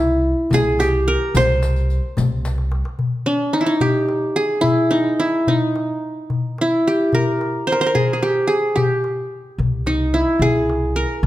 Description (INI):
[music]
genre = Arabic maqam ensemble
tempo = 73 BPM (dotted quarters)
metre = 6/8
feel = straight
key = C maqam saba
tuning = A4 = 441 Hz
[part]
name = qanun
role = melody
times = 0.0-11.3 s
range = D4-50c to C5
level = -18 LUFS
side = equal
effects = none
[part]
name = upright bass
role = bass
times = 0.0-2.8, 9.6-11.3 s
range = C2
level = -21 LUFS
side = equal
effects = none
[part]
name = darbuka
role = percussion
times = 0.1-11.3 s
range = none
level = -23 LUFS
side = left 3 dB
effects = none
[part]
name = riq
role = percussion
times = 0.5-2.6 s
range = none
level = -32 LUFS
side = left 4 dB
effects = none
[sound]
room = wet recital hall reverb, RT60 1.6 s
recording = none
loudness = -16 LUFS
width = side -14 dB against mid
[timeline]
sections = 0.0-3.0 A section; 3.0-11.3 B section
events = drum fill 2.4-3.0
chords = none